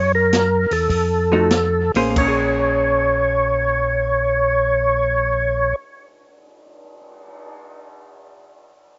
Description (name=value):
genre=soul jazz organ trio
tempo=87-110 BPM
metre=4/4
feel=swing 68% on 8ths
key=Bb minor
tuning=A4 = 440 Hz
part: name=percussive tonewheel organ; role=melody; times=0.0-5.8 s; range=A4 to Db5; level=-20 LUFS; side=equal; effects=overdrive, chorus vibrato, slow rotary speaker
part: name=mellow tonewheel organ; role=bass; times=0.0-5.7 s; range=A1 to Gb2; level=-26 LUFS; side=equal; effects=slow rotary speaker
part: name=open jazz drum kit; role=drums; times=0.3-7.5 s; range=crash cymbal, cymbal swell, hi-hat, kick drum, snare drum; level=-28 LUFS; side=equal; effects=none
part: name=vintage hollow-body jazz guitar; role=accompaniment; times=1.3-5.9 s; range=F3 to C5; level=-24 LUFS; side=equal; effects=slapback echo
room=little or no reverb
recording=recorded outdoors, with no room sound, nothing above 7.7 kHz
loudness=-18 LUFS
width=mono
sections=0.0-2.2 A section; 2.2-7.7 B section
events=slowing down 0.0-2.2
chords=0.0 Gb7; 0.9 F7b9; 2.2 Bbm7